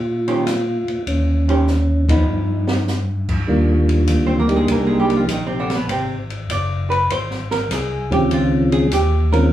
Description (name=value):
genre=soul jazz organ trio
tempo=99 BPM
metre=4/4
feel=swing 68% on 8ths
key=Eb mixolydian, C minor from 3.5 s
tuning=A4 = 440 Hz
part: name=percussive tonewheel organ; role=melody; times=0.0-9.5 s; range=Eb3 to G4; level=-19 LUFS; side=equal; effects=slow rotary speaker, chorus vibrato, plate reverb
part: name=tonewheel organ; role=bass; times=0.0-9.5 s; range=Gb1 to Bb2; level=-20 LUFS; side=equal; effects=slow rotary speaker
part: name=archtop guitar, miked and amplified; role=accompaniment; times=0.3-9.5 s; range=B2 to D5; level=-21 LUFS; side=right 1 dB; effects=none
part: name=open jazz drum kit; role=drums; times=0.3-9.4 s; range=crash cymbal, hi-hat, kick drum, ride cymbal, snare drum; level=-26 LUFS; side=equal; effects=none
room=wet studio reverb, RT60 0.6 s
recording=heard from further back in the room, small room ambience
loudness=-16 LUFS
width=side -12 dB against mid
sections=0.0-3.5 A section; 3.5-9.5 B section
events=drum fill 1.7-2.9; band accent 2.0-2.3; hollow-body jazz guitar solo 3.5-9.5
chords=0.0 Eb13; 2.3 Gaug7; 3.5 Cm11; 5.9 Ab7; 8.3 Dbmaj9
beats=0.46 | 1.07 1.67 2.27 2.88 | 3.48 4.08 4.69 5.29 | 5.89 6.50 7.10 7.71 | 8.31 8.91